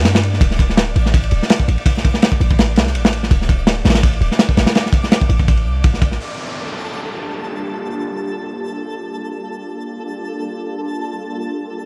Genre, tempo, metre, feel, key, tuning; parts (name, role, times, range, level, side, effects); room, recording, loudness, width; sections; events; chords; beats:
drum and bass, jungle; 166 BPM; 4/4; swing 55% on 16ths; G minor; A4 = 441 Hz
warm 808-style bass; bass; 0.0-6.2 s; D1 to G2; -19 LUFS; equal
crunchy breakbeat drum kit; drums; 0.0-6.2 s; kick drum, ride cymbal, snare drum; -16 LUFS; equal
twinkling granular texture; texture; 0.1-11.9 s; A4 to D6; -34 LUFS; equal; built-in reverb
ethereal airy pad; sustained chords; 6.9-11.9 s; G3 to G4; -28 LUFS; equal; ensemble chorus, built-in reverb
downlifter; sound effects; 6.2-9.1 s; -32 LUFS; equal
light reverb, studio reverb; dry, gritty hardware recording; -17 LUFS; mono
0.0-6.2 A section; 6.2-11.9 B section
drop 0.0-6.2; filter sweep on ambient pad 6.2-11.9
0.4 D5; 6.2 Gm7
0.06 | 0.42 0.78 1.14 1.50 | 1.86 2.23 2.59 2.95 | 3.31 3.67 4.03 4.39 | 4.75 5.12 5.48 5.84 | 6.20 6.56 6.92 7.29 | 7.65 8.01 8.37 8.73 | 9.09 9.45 9.82 10.18 | 10.54 10.90 11.26 11.62